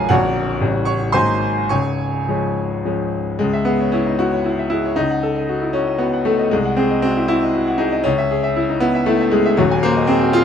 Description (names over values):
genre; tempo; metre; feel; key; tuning
classical, virtuoso piano study; 104-121 BPM; 3/4; rubato; Db major, C# minor from 3.4 s; A4 = 440 Hz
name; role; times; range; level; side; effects
bright grand piano; solo; 0.0-10.4 s; A0 to C#6; -16 LUFS; left 1 dB; none
room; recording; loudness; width
light reverb; close, detailed microphones; -16 LUFS; side -8 dB against mid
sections
0.0-3.4 A section; 3.4-10.4 B section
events
none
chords
0.1 Gb/Bb; 0.6 A7; 1.1 Ab9; 1.7 Db; 3.4 C#m; 5.0 D#m7b5/C#; 6.5 G#7/B#; 8.0 C#m; 9.6 Ab7/Eb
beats
| 0.10 0.61 1.15 | 1.71 2.29 2.85 | 3.40 3.93 4.45 | 4.97 5.48 6.00 | 6.51 7.03 7.54 | 8.05 8.57 9.08 | 9.58 10.09